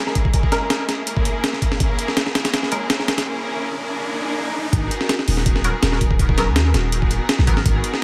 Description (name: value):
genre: drum and bass, jungle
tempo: 164 BPM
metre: 4/4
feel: straight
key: G# minor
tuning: A4 = 440 Hz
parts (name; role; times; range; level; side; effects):
- rich symphonic string section; sustained chords; 0.0-8.0 s; A#3 to A#4; -28 LUFS; equal; vintage 12-bit sampler grit
- long sustained 808-style bass; bass; 0.0-7.8 s; D#1 to D#2; -22 LUFS; equal; tube saturation, high-pass filter
- riser; sound effects; 0.0-4.7 s; none; -33 LUFS; equal; none
- breakbeat sampler-style drum kit; drums; 0.1-8.0 s; hi-hat, kick drum, snare drum; -22 LUFS; equal; studio reverb
- band-passed chord stab; stabs; 0.5-2.8, 5.6-7.6 s; F#3 to A#4; -30 LUFS; equal; phaser, ensemble chorus, cassette tape, dub echo
room: moderate spring reverb, RT60 1.8 s, digital ambience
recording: echo-heavy mix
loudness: -20 LUFS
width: mono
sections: 0.0-4.7 A section; 4.7-8.0 B section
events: build-up 0.0-4.7; riser 0.0-4.7; filter sweep on synth stab 0.0-4.7; break 3.3-4.7; drop 4.7-8.0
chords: 0.0 A#m7b5; 4.7 G#m9